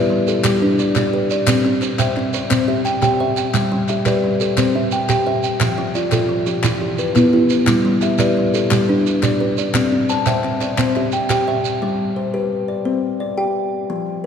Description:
southern african traditional, mbira-style interlocking cycle; 116 BPM (dotted quarters); 12/8; straight; G mixolydian; A4 = 440 Hz
kalimba; arpeggios; 0.0-14.3 s; E3 to A5; -18 LUFS; left 3 dB
kalimba; arpeggios; 0.0-12.2 s; E3 to G5; -22 LUFS; right 3 dB
shekere; percussion; 0.3-11.8 s; -22 LUFS; right 5 dB
group handclap; percussion; 0.4-11.5 s; -28 LUFS; left 4 dB
wet cathedral reverb, RT60 5.1 s; recorded in a church or concert hall; -15 LUFS; side -7 dB against mid
0.0-11.8 A section; 11.8-14.3 B section
0.0 G; 1.5 C; 3.5 G; 4.6 C; 5.6 F; 6.6 Em; 7.7 G; 9.7 C; 11.8 G; 12.9 C5

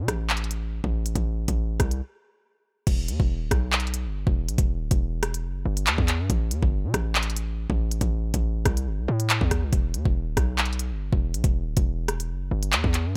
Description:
hip hop, drill; 140 BPM; 4/4; half-time; E minor; A4 = 440 Hz
hard-hitting 808-style bass; bass; 0.0-13.2 s; D1 to C3; -29 LUFS; equal
drill drum kit; drums; 0.1-13.0 s; crash cymbal, handclaps, hi-hat, kick drum, rim click; -26 LUFS; equal
little or no reverb; -26 LUFS; mono
0.0-2.9 A section; 2.9-13.2 B section
break 2.0-2.9

